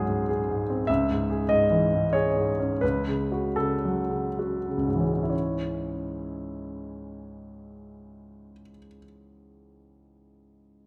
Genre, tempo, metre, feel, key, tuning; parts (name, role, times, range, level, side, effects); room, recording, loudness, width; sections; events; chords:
classical, romantic character piece for solo piano; 62-102 BPM; 3/4; rubato; C# minor; A4 = 440 Hz
warm baby grand piano; solo; 0.0-10.9 s; C#2 to E5; -27 LUFS; equal
wet recital hall reverb, RT60 1.7 s; -26 LUFS; mono
0.0-5.3 A section; 5.3-10.9 B section
slowing down 0.0-5.3
0.0 G#7/C#; 0.9 C#m; 2.8 F#m/C#; 5.3 C#m